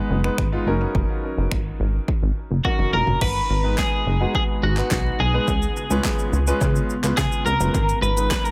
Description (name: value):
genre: dance-pop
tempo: 106 BPM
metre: 4/4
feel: straight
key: G# dorian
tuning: A4 = 440 Hz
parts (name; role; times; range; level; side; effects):
- warm concert grand piano; accompaniment; 0.0-8.5 s; F#3 to B4; -30 LUFS; equal; sidechain pumping, analog delay
- plucky analog bass; bass; 0.1-8.3 s; E#1 to C#3; -25 LUFS; equal; sidechain pumping
- deep house drum kit; drums; 0.2-8.5 s; crash cymbal, finger snaps, handclaps, hi-hat, kick drum, shaker, snare drum, toms; -27 LUFS; equal; none
- twelve-string electric guitar; melody; 2.6-8.5 s; F#4 to B4; -26 LUFS; equal; analog delay
- glassy FM pad; sustained chords; 3.5-8.5 s; C#3 to B4; -36 LUFS; equal; none
room: light reverb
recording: echo-heavy mix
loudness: -21 LUFS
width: mono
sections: 0.0-3.2 A section; 3.2-8.5 B section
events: drum fill 2.6-3.2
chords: 0.0 G#m; 0.7 D#m7/F#; 3.2 G#m; 5.5 C#7; 7.7 G#m